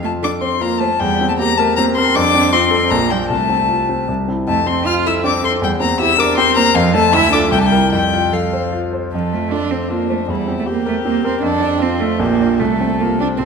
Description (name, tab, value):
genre	quick classical-period movement for piano trio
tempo	155 BPM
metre	3/4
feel	rubato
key	F major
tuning	A4 = 440 Hz
part	rich violin	melody	0.0-13.5 s	D4 to F6	-18 LUFS	left 7 dB	none
part	warm cello	second line	0.0-13.5 s	F3 to F4	-19 LUFS	right 8 dB	none
part	warm concert grand piano	accompaniment	0.0-13.5 s	Bb1 to C5	-18 LUFS	left 1 dB	none
room	wet concert hall reverb, RT60 1.9 s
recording	none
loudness	-13 LUFS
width	side -5 dB against mid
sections	0.0-9.1 A section; 9.1-13.5 A section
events	none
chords	0.0 F; 1.0 C7/E; 2.2 F; 2.9 Bb; 3.3 F/C; 4.1 C; 4.5 F; 5.6 C7/E; 6.8 F; 7.1 Dm; 7.5 C7; 7.9 F; 10.3 C7/E; 11.4 F; 12.2 Bb; 12.6 F/C